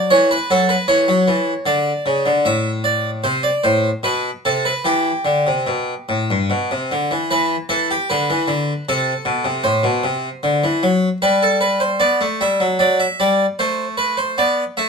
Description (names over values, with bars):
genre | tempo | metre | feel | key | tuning
classical, baroque-style two-part invention for harpsichord | 76 BPM | 3/4 | straight | E minor | A4 = 440 Hz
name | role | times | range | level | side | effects
harpsichord | solo | 0.0-14.9 s | G2 to E5 | -16 LUFS | equal | none
room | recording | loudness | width
moderate studio reverb, RT60 0.6 s | minimal, uncompressed stereo recording | -16 LUFS | side -5 dB against mid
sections
0.0-7.3 A section; 7.3-12.0 B section; 12.0-14.9 A section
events
none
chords
0.1 A69/E; 1.7 N.C.; 2.5 Amadd11; 4.0 Amadd9/B; 4.8 Em; 7.3 E5; 8.9 Am/C; 9.6 N.C.; 11.2 Gadd9; 12.0 Bm (rootless); 13.6 Am; 14.4 G (rootless)